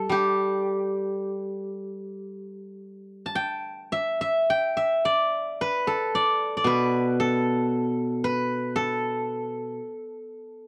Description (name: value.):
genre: chinese traditional, Chinese solo plucked strings.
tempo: 52-59 BPM.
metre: 4/4.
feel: rubato.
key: unclear.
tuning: A4 = 439 Hz.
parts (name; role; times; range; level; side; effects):
steel-string zither; solo; 0.0-10.7 s; B2 to A5; -27 LUFS; equal; none.
room: little or no reverb.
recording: dry, close 1970s-style studio recording.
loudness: -26 LUFS.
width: mono.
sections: 0.0-10.7 A section.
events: none.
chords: none.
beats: | 0.11 1.15 2.23 3.34 | 4.48 5.59 6.65 7.69 | 8.73 9.78.